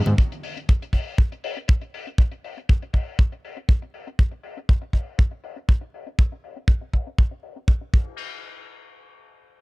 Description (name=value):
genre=nu-disco, nu disco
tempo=120 BPM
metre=4/4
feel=straight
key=none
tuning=none
part: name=damped 70s drum kit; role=drums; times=0.1-8.0 s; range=crash cymbal, hi-hat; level=-38 LUFS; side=left 6 dB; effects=low-pass filter on hats, low-pass filter on cymbals, low-pass filter on snare, low-pass filter on room
part: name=kick drum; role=drums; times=0.2-8.0 s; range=none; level=-17 LUFS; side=equal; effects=none
room=small room ambience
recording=none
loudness=-21 LUFS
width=side -23 dB against mid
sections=0.0-8.2 A section; 8.2-9.6 B section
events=filter sweep on drum 0.0-8.2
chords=none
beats=| 0.19 0.69 1.19 1.69 | 2.19 2.69 3.19 3.69 | 4.19 4.69 5.19 5.69 | 6.19 6.69 7.19 7.69